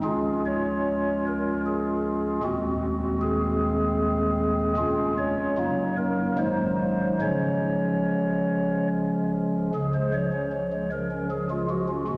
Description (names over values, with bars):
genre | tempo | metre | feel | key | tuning
classical, chorale-style piece for pipe organ | 70-79 BPM | 3/4 | rubato | Db major | A4 = 445 Hz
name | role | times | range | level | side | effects
pipe organ, stopped flute | solo | 0.0-12.2 s | Db1 to Db5 | -26 LUFS | equal | none
room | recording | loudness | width
wet church reverb, RT60 2.8 s | none | -26 LUFS | mono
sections
0.0-9.7 A section; 9.7-12.2 A section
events
none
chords
0.0 Db; 2.4 Ab7/Eb; 4.8 Db/F; 5.6 Ebm7/Gb; 6.4 Ab7; 7.2 Db